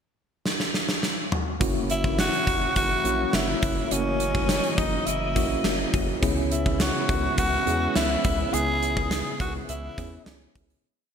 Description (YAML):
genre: 1980s-style pop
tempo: 104 BPM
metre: 4/4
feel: straight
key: F# mixolydian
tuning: A4 = 440 Hz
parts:
  - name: gated 80s drum kit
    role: drums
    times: 0.5-10.8 s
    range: hi-hat, kick drum, snare drum, toms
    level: -26 LUFS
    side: equal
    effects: gated reverb
  - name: tine electric piano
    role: accompaniment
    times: 1.6-10.9 s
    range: C#3 to G#4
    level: -29 LUFS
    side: equal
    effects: medium stereo tremolo
  - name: warm studio string section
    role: sustained chords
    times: 1.6-10.8 s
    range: C#3 to D#5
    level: -34 LUFS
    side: left 1 dB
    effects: none
  - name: round analog bass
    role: bass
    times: 1.6-10.8 s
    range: F#1 to E2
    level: -31 LUFS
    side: equal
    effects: none
  - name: raspy tenor saxophone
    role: melody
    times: 1.9-10.5 s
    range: C#4 to G#4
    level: -27 LUFS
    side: equal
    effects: none
room: moderate plate reverb, RT60 2.7 s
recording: bright 1980s-style digital production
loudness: -22 LUFS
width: side -7 dB against mid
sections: 0.0-1.6 pickup bar; 1.6-10.8 verse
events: drum fill 0.5-1.6; fade-out 8.5-10.8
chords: 0.0 N.C.; 1.6 F#7; 6.2 C#m7